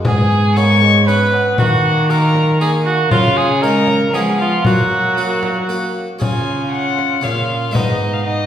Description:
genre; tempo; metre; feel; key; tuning
classical, renaissance-style consort dance; 117 BPM; 3/4; straight; unclear; A4 = 439 Hz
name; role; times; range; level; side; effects
dark violin; melody; 0.0-8.5 s; D#5 to C#6; -21 LUFS; left 5 dB; none
mellow bassoon; accompaniment; 0.0-8.5 s; G#3 to D#4; -24 LUFS; left 1 dB; none
frame drum; percussion; 0.0-8.0 s; none; -20 LUFS; left 1 dB; none
warm cor anglais; second line; 0.1-8.5 s; D#4 to C#5; -18 LUFS; right 2 dB; none
harpsichord; accompaniment; 0.1-8.5 s; G#2 to B4; -22 LUFS; equal; none
rich cello; bass; 0.1-8.5 s; G#2 to F#3; -19 LUFS; right 1 dB; none
room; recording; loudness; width
wet recital hall reverb, RT60 1.3 s; recorded in a church or concert hall; -13 LUFS; side -10 dB against mid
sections
0.0-6.2 A section; 6.2-8.5 B section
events
none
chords
0.0 G#m; 1.6 D#m; 3.1 C#; 4.7 F#; 6.2 C#; 7.8 G#m

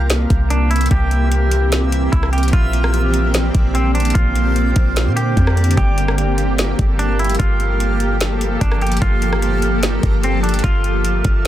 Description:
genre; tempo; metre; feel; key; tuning
hip hop, atmospheric cloud-rap; 148 BPM; 4/4; half-time; G dorian; A4 = 441 Hz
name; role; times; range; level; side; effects
clean electric guitar; melody; 0.0-11.5 s; C4 to G4; -23 LUFS; right 1 dB; tape echo, plate reverb
granular cloud pad; sustained chords; 0.0-11.5 s; D3 to A4; -21 LUFS; equal; built-in reverb, sidechain pumping
clean 808-style bass; bass; 0.0-11.4 s; G1 to Bb2; -17 LUFS; equal; none
backwards swelling texture; texture; 0.0-11.5 s; Bb3 to F5; -32 LUFS; right 2 dB; built-in reverb, plate reverb
smooth R&B drum kit; drums; 0.1-11.5 s; hi-hat, kick drum, rim click, snare drum; -19 LUFS; equal; soft clipping on snare
room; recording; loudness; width
light reverb; dense, heavily limited modern master; -14 LUFS; side -12 dB against mid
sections
0.0-11.5 A section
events
none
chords
0.0 C7; 2.5 Bb69; 5.8 Gm9

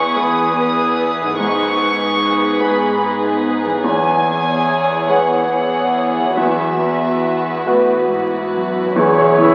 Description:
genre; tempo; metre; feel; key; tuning
cinematic, emotional film score for orchestra; 47 BPM (dotted quarters); 6/8; uneven beats, rubato; E major; A4 = 440 Hz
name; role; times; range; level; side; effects
clear studio violin section; melody; 0.0-9.5 s; C#5 to D#6; -22 LUFS; equal; none
warm studio violin section; second line; 0.0-9.5 s; E4 to C#5; -23 LUFS; equal; none
bright grand piano; accompaniment; 0.0-9.5 s; E2 to C#5; -21 LUFS; equal; none
warm studio viola section; accompaniment; 0.0-9.5 s; E3 to E4; -25 LUFS; equal; none
concert harp; arpeggios; 0.0-9.5 s; E2 to C#5; -29 LUFS; equal; none
warm studio cello section; bass; 0.2-9.5 s; E2 to C#3; -31 LUFS; equal; none
mellow clarinet; second line; 9.0-9.5 s; G#4; -19 LUFS; equal; none
warm oboe; second line; 9.0-9.5 s; C#5; -19 LUFS; equal; none
rich studio double bass section; bass; 9.0-9.5 s; E2; -30 LUFS; equal; none
bright concert flute; second line; 9.4-9.5 s; E4; -15 LUFS; equal; none
room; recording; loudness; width
wet scoring stage reverb, RT60 2.0 s; very old 78 rpm record, vinyl crackle; -16 LUFS; mono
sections
0.0-9.0 A section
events
none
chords
0.0 E; 1.4 G#m; 3.8 E6; 6.4 Esus2; 9.0 E6

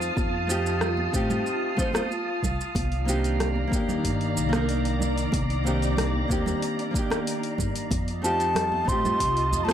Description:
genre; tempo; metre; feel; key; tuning
sunset chillout; 93 BPM; 4/4; straight; C dorian; A4 = 438 Hz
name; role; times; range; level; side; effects
nylon-string guitar; accompaniment; 0.0-9.7 s; A3 to C5; -30 LUFS; equal; auto-pan, tape echo
soft string machine; sustained chords; 0.0-9.7 s; Eb3 to Eb6; -30 LUFS; left 1 dB; ensemble chorus
upright bass; bass; 0.0-9.7 s; G1 to A2; -28 LUFS; equal; none
deep house drum kit; drums; 0.0-9.7 s; hi-hat, rim click, shaker; -32 LUFS; left 1 dB; overdrive
drifting glass-harmonics texture; texture; 0.0-9.7 s; F5; -38 LUFS; right 7 dB; chorus, built-in reverb
electronic kick drum; drums; 0.2-9.3 s; none; -29 LUFS; equal; none
congas; percussion; 0.2-9.7 s; none; -35 LUFS; right 3 dB; none
bright baroque flute; melody; 8.2-9.7 s; A5 to C6; -24 LUFS; equal; none
room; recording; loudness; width
light reverb, small room ambience; dry, gritty hardware recording; -23 LUFS; side -10 dB against mid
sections
0.0-9.7 A section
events
none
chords
0.0 F7; 2.7 Cm9; 7.9 F7

